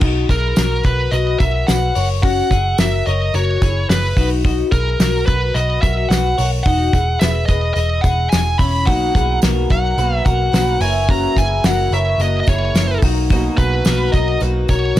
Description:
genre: jangly indie pop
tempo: 108 BPM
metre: 4/4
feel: straight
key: B major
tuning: A4 = 440 Hz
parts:
  - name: twelve-string electric guitar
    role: arpeggios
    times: 0.0-15.0 s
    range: C#4 to C#5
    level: -22 LUFS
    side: left 6 dB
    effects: analog chorus, plate reverb
  - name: vintage muted picked electric bass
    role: bass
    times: 0.0-15.0 s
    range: E1 to B1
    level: -19 LUFS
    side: equal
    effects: none
  - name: loose indie drum kit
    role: drums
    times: 0.0-15.0 s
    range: crash cymbal, hi-hat, kick drum, snare drum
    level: -18 LUFS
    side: equal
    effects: none
  - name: tambourine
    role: percussion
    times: 0.0-15.0 s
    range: none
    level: -35 LUFS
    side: right 14 dB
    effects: none
  - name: bluesy overdriven lead guitar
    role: melody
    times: 0.3-15.0 s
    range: A#4 to B5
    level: -20 LUFS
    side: right 1 dB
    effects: distortion, plate reverb
  - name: picked twelve-string acoustic guitar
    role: accompaniment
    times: 8.9-15.0 s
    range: F#2 to E4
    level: -24 LUFS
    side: right 4 dB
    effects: plate reverb
room: light reverb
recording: dark, warm production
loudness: -14 LUFS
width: side -13 dB against mid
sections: 0.0-15.0 A section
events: none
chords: 0.0 Bmaj7; 2.0 F#7; 4.2 Bmaj7; 6.7 Emaj7; 8.9 Bmaj7; 10.8 F#7; 13.0 Bmaj7

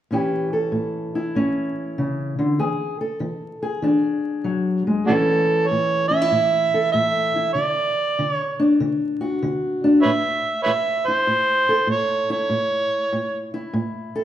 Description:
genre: acoustic country blues, solo or duo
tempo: 97 BPM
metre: 4/4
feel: swing 66% on 8ths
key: A major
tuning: A4 = 441 Hz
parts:
  - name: fingerpicked steel-string acoustic guitar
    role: accompaniment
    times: 0.1-14.2 s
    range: A2 to A4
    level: -21 LUFS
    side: left 1 dB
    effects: none
  - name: overdriven harmonica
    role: melody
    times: 5.1-13.5 s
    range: D4 to E5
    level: -19 LUFS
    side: right 2 dB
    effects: none
room: wet recital hall reverb, RT60 1.3 s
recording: recorded in a church or concert hall, vinyl crackle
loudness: -19 LUFS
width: side -11 dB against mid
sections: 0.1-5.1 A section; 5.1-14.2 B section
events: none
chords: 0.1 A7; 2.6 E7; 5.1 A; 7.5 D; 10.0 A

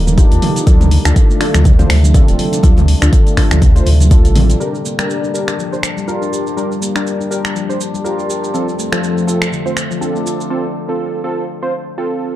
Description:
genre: afro house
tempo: 122 BPM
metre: 4/4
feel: swing 56% on 16ths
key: G minor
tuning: A4 = 441 Hz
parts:
  - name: warm sub bass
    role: bass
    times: 0.0-4.5 s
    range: D1 to Eb2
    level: -12 LUFS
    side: equal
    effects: sidechain pumping
  - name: handpan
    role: arpeggios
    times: 0.1-10.4 s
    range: A2 to G4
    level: -21 LUFS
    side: left 1 dB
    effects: sidechain pumping, low-pass filter, dub echo
  - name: deep house drum kit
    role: drums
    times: 0.1-10.5 s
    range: finger snaps, hi-hat, shaker, toms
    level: -20 LUFS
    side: equal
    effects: none
  - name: congas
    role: percussion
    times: 0.1-4.6 s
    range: none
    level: -21 LUFS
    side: right 3 dB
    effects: none
  - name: warm analog keys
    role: stabs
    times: 0.2-12.4 s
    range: C4 to C5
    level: -21 LUFS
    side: equal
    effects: chorus, sidechain pumping, low-pass filter, dub echo
  - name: electronic kick drum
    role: drums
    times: 0.2-4.2 s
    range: none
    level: -10 LUFS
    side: equal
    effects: none
  - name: warm analog pad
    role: sustained chords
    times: 4.6-10.5 s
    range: F3 to Bb4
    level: -24 LUFS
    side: left 3 dB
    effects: chorus, sidechain pumping
room: digital ambience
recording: dark, warm production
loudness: -11 LUFS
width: side -14 dB against mid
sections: 0.0-4.6 A section; 4.6-12.4 B section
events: filter sweep on handpan 0.0-4.6, 4.6-12.4; break 10.5-12.4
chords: 0.0 Ebadd9; 0.7 Dm; 4.6 Gm; 8.5 F

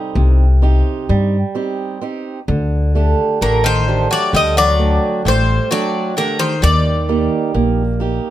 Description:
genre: greek folk, Greek bouzouki band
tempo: 130 BPM (eighths)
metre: 9/8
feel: straight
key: D phrygian dominant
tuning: A4 = 440 Hz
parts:
  - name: Greek bouzouki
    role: melody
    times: 0.0-8.3 s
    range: A4 to Eb5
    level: -18 LUFS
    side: left 1 dB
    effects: slapback echo
  - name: Greek bouzouki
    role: second line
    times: 0.0-8.3 s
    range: C3 to G3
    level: -23 LUFS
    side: left 3 dB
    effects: none
  - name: fingerpicked swing-style acoustic guitar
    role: accompaniment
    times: 0.0-8.3 s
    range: C3 to G5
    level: -20 LUFS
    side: right 5 dB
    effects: none
  - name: upright bass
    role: bass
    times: 0.2-8.2 s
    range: A1 to G2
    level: -15 LUFS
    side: left 1 dB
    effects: none
room: little or no reverb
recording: close, detailed microphones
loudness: -13 LUFS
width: side -13 dB against mid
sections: 0.0-8.3 A section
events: none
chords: 0.0 Cm; 2.5 Dsus4; 6.6 Eb

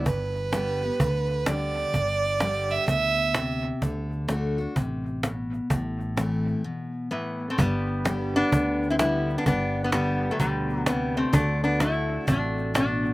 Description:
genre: honky-tonk and classic country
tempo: 128 BPM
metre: 4/4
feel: swing 64% on 8ths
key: G major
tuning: A4 = 437 Hz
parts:
  - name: mellow tonewheel organ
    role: accompaniment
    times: 0.0, 7.6-13.1 s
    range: D4 to B4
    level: -36 LUFS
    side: right 6 dB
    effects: slow rotary speaker, slapback echo
  - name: picked steel-string acoustic guitar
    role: accompaniment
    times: 0.0-13.1 s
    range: G2 to G4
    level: -31 LUFS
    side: left 2 dB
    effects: none
  - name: fingered electric bass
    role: bass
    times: 0.0-13.1 s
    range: G1 to D2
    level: -30 LUFS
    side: equal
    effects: none
  - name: clear fiddle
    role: second line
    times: 0.1-3.6 s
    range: B4 to E5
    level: -26 LUFS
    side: right 4 dB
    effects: none
  - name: cajon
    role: drums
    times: 0.1-13.1 s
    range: none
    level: -25 LUFS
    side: equal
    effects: none
  - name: lap resonator guitar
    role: melody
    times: 7.1-13.1 s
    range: D3 to E4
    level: -25 LUFS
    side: left 1 dB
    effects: slapback echo
room: little or no reverb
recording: recorded outdoors, with no room sound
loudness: -23 LUFS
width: side -18 dB against mid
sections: 0.1-7.6 A section; 7.6-13.1 B section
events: fiddle solo 0.1-7.6; break 6.6-7.6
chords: 0.1 G; 3.8 D; 5.7 Am; 7.6 G; 11.3 D

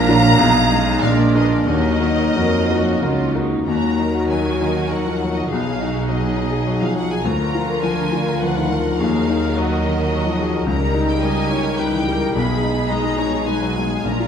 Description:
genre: classical, romantic movement for piano and orchestra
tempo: 86-110 BPM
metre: 3/4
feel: rubato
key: Eb minor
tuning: A4 = 440 Hz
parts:
  - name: clear grand piano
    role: melody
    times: 0.0-14.3 s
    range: Bb1 to Bb4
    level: -20 LUFS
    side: left 2 dB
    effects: none
  - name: rich studio violin section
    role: melody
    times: 0.0-14.3 s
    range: D5 to Cb6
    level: -28 LUFS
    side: left 2 dB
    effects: none
  - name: bright concert flute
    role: second line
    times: 0.0-3.3 s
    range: Bb4 to F5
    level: -28 LUFS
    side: left 1 dB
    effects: none
  - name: dark clarinet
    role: second line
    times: 0.0-3.3 s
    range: D4 to Eb4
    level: -25 LUFS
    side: right 2 dB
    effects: none
  - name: warm oboe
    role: second line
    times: 0.0-3.3 s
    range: Ab4 to Bb4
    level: -30 LUFS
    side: right 1 dB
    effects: none
  - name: warm studio violin section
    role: second line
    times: 0.0-14.3 s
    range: D4 to Bb5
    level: -26 LUFS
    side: equal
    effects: none
  - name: clear bassoon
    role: accompaniment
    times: 0.0-3.3 s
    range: F3 to Ab3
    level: -28 LUFS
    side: equal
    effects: none
  - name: rich studio viola section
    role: accompaniment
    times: 0.0-14.3 s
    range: Db4 to Eb5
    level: -28 LUFS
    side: right 1 dB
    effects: none
  - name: dark French horn section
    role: sustained chords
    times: 0.0-14.3 s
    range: F3 to F4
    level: -28 LUFS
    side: left 2 dB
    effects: none
  - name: mellow tuba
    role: bass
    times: 0.0-3.7 s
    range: Bb1 to F2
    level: -26 LUFS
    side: right 4 dB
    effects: none
  - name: rich studio double bass section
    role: bass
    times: 0.0-14.3 s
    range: Bb1 to F2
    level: -25 LUFS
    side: right 3 dB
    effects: none
  - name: warm studio cello section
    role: bass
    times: 0.0-14.3 s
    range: Bb2 to F3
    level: -27 LUFS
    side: right 4 dB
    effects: none
room: wet scoring stage reverb, RT60 1.9 s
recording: minimal, uncompressed stereo recording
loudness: -16 LUFS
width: side -8 dB against mid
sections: 0.0-3.7 A section; 3.7-14.3 A section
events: none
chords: 0.4 Abm/Cb; 1.0 Bb7; 1.7 Ebm; 5.5 B6; 7.2 Bb/D; 9.0 Ebm; 10.7 Eb7/Db; 12.4 Abm/Cb

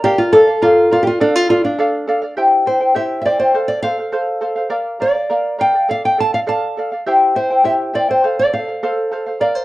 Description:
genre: andean folk, Andean ensemble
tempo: 102 BPM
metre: 2/4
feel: straight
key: unclear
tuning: A4 = 440 Hz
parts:
  - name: nylon-string guitar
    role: melody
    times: 0.0-9.6 s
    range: D4 to A5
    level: -15 LUFS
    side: equal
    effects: none
  - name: charango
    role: accompaniment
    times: 0.0-9.6 s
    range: E4 to G5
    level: -17 LUFS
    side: left 1 dB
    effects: none
room: moderate studio ambience, RT60 0.5 s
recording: worn, warbling old tape, cassette tape, warbly pitch drift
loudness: -13 LUFS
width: side -17 dB against mid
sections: 0.0-2.4 A section; 2.4-9.6 B section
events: none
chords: 0.1 Bb; 1.2 Dm; 2.4 C; 3.5 F; 4.7 Bb; 5.9 Dm; 7.1 C; 8.2 F

